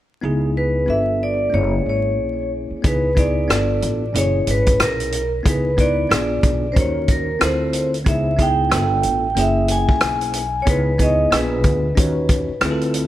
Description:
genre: hip hop, jazz-hop.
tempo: 92 BPM.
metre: 4/4.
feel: swing 58% on 16ths.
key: C# dorian.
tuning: A4 = 440 Hz.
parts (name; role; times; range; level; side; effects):
bell-like tine electric piano; accompaniment; 0.2-13.1 s; A#2 to C#5; -24 LUFS; equal; fast stereo tremolo.
upright bass; bass; 0.2-13.1 s; F#1 to D#2; -22 LUFS; equal; none.
vibraphone with medium hard mallets; melody; 0.6-12.9 s; A#4 to G#5; -21 LUFS; equal; tape echo.
vintage drum kit; drums; 2.8-13.1 s; hi-hat, kick drum, rim click; -20 LUFS; equal; none.
room: light reverb, small room ambience.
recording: vinyl crackle.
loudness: -16 LUFS.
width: side -13 dB against mid.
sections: 0.2-2.8 A section; 2.8-13.1 B section.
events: none.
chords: 0.2 C#m9; 0.9 G9; 1.5 F#9; 2.8 C#m9; 3.5 G9; 4.1 F#9; 5.5 C#m9; 6.1 A#7b9; 6.8 D#m7; 7.4 Dm9; 8.1 C#m9; 8.7 G9; 9.4 F#9; 10.7 C#m9; 11.3 A#7b9; 12.0 D#m7.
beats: | 0.23 0.89 1.54 2.19 | 2.84 3.49 4.15 4.80 | 5.45 6.10 6.75 7.41 | 8.06 8.71 9.36 10.02 | 10.67 11.32 11.97 12.62.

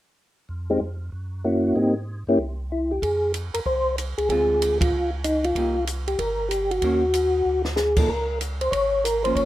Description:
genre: soul jazz organ trio.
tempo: 190 BPM.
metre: 4/4.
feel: swing 63% on 8ths.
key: F minor.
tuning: A4 = 440 Hz.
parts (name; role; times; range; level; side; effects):
tonewheel organ; bass; 0.5-9.5 s; G1 to Ab2; -30 LUFS; right 1 dB; chorus vibrato, slow rotary speaker.
percussive tonewheel organ; melody; 0.7-9.5 s; Ab3 to Db5; -21 LUFS; left 1 dB; slow rotary speaker, chorus vibrato.
compact cocktail drum kit; drums; 3.0-9.5 s; crash cymbal, hi-hat, kick drum, ride cymbal, snare drum; -29 LUFS; right 1 dB; none.
vintage hollow-body jazz guitar; accompaniment; 4.3-9.5 s; D3 to G4; -28 LUFS; right 3 dB; none.
room: wet small room reverb, RT60 0.5 s.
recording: rough home demo mix.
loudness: -21 LUFS.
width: side -14 dB against mid.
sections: 0.5-3.0 A section; 3.0-9.5 B section.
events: band accent 4.8; drum fill 7.5-7.8.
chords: 0.5 N.C.; 1.1 Gb7; 1.8 Abmaj9; 2.4 C; 3.0 Fm; 4.3 Dm7b5; 4.9 Dbadd9; 5.6 Cm7; 6.8 Ebm7; 7.5 Dm; 8.1 Db5.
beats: | 0.49 0.81 1.13 1.44 | 1.76 2.08 2.40 2.71 | 3.03 3.35 3.66 3.98 | 4.30 4.61 4.93 5.25 | 5.56 5.88 6.20 6.51 | 6.83 7.14 7.46 7.78 | 8.09 8.41 8.72 9.04 | 9.36.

